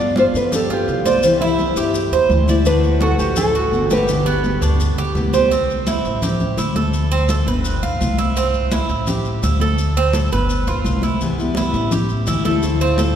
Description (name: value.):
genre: latin, Cuban son and guajira.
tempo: 168 BPM.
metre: 4/4.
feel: straight.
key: C major.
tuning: A4 = 440 Hz.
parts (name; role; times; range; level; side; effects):
nylon-string guitar; melody; 0.0-5.1 s; G4 to E5; -20 LUFS; left 1 dB; none.
picked steel-string acoustic guitar; accompaniment; 0.0-5.5, 11.2-13.2 s; B2 to G4; -22 LUFS; left 3 dB; none.
Cuban tres; arpeggios; 0.0-13.2 s; B3 to D5; -21 LUFS; right 5 dB; none.
upright bass; bass; 0.0-13.1 s; G1 to G2; -20 LUFS; equal; none.
maracas; percussion; 0.0-13.2 s; none; -32 LUFS; left 5 dB; none.
congas; percussion; 0.2-13.2 s; none; -24 LUFS; left 1 dB; none.
room: wet cathedral reverb, RT60 5.5 s.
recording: recorded in a church or concert hall.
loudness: -15 LUFS.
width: side -9 dB against mid.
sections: 0.0-5.5 A section; 5.5-13.2 B section.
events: none.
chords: 0.0 G7; 1.2 C; 2.7 D7; 4.1 G; 5.5 C; 6.2 A5; 6.9 D5; 7.6 G7; 8.4 C; 9.1 A5; 9.8 D5; 10.5 G7; 11.2 Cmaj7; 11.9 Am7; 12.6 Dm7.